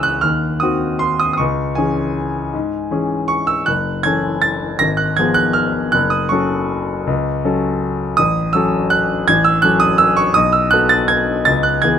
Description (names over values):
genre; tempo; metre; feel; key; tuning
classical, piano waltz; 148-173 BPM; 3/4; rubato; unclear; A4 = 440 Hz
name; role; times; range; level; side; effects
warm grand piano; solo; 0.0-12.0 s; F#1 to A#6; -14 LUFS; equal; none
room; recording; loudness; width
little or no reverb; close, detailed microphones; -14 LUFS; side -8 dB against mid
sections
0.0-12.0 A section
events
none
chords
0.2 Cdim/Eb; 1.4 C#m; 3.7 F#m7; 4.8 Fdim/Ab; 5.9 F#m; 8.2 F#m/A; 10.4 B5; 11.5 C#m7